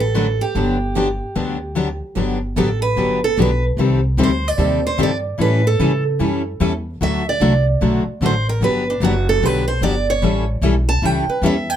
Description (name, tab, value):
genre	acoustic string swing (jazz manouche)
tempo	149 BPM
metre	4/4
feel	swing 62% on 8ths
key	G major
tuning	A4 = 440 Hz
part	picked steel-string acoustic guitar	melody	0.0-11.8 s	D4 to A5	-21 LUFS	right 4 dB	none
part	upright bass	bass	0.0-11.8 s	F#1 to C#3	-20 LUFS	equal	none
part	picked steel-string acoustic guitar	accompaniment	0.1-11.5 s	C3 to B4	-20 LUFS	left 5 dB	none
part	picked steel-string acoustic guitar	accompaniment	0.1-11.5 s	C3 to A4	-27 LUFS	right 8 dB	none
room	light reverb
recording	none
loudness	-16 LUFS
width	side -10 dB against mid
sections	0.0-2.2 A section; 2.2-11.8 B section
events	steel-string acoustic guitar solo 2.2-11.8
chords	0.0 D6; 0.5 Gmaj7; 3.8 Cm6; 5.4 A7; 7.0 D; 8.6 Gmaj7; 10.2 A7